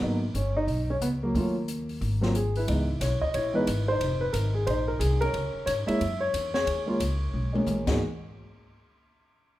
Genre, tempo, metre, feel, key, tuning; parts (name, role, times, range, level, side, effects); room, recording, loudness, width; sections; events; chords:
jazz piano trio; 181 BPM; 4/4; swing 63% on 8ths; A4 = 438 Hz
dark baby grand piano; melody; 0.0-8.0 s; E3 to E5; -27 LUFS; equal
upright bass; bass; 0.0-8.0 s; F1 to G#2; -29 LUFS; equal
open jazz drum kit; drums; 0.3-7.9 s; crash cymbal, hi-hat, kick drum, ride cymbal, snare drum, toms; -35 LUFS; left 1 dB
light reverb; -25 LUFS; side -15 dB against mid
0.0-2.7 A section; 2.7-8.0 B section; 8.0-9.3 C section
drum fill 7.3-8.0
0.0 G#m9; 1.4 D#m7b5; 2.0 N.C.; 2.7 C#m7; 4.0 F7sus4; 5.3 A#m7b5; 6.7 D#7sus4; 7.8 G#m9; 8.0 N.C.